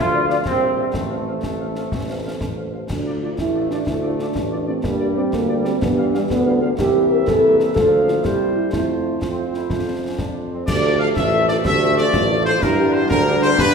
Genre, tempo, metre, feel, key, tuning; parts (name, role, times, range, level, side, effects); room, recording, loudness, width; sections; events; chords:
military-style march for wind band; 123 BPM (dotted quarters); 6/8; straight; A4 = 439 Hz
mellow euphonium; second line; 0.0-13.7 s; F3 to Bb4; -21 LUFS; right 2 dB
warm trombone section; sustained chords; 0.0-13.7 s; D3 to F4; -26 LUFS; right 1 dB
warm tuba; bass; 0.0-13.7 s; A1 to G2; -22 LUFS; right 1 dB
clear trumpet section; melody; 0.1-13.7 s; Bb4 to F5; -24 LUFS; left 2 dB
mellow French horn section; accompaniment; 0.1-13.5 s; G3 to D5; -29 LUFS; left 2 dB
concert snare drum, concert bass drum and clash cymbals; drums; 0.3-13.7 s; -27 LUFS; left 2 dB
wet scoring stage reverb, RT60 1.8 s; recorded in a church or concert hall; -17 LUFS; side -5 dB against mid
0.0-2.9 A section; 2.9-10.7 A section; 10.7-13.7 A section
0.5 C7/Bb; 0.9 F/A; 2.9 Dm; 4.8 Gm; 5.8 G7; 6.8 C7; 7.8 Dm; 8.2 C7; 8.7 F; 10.7 Dm; 12.6 Gm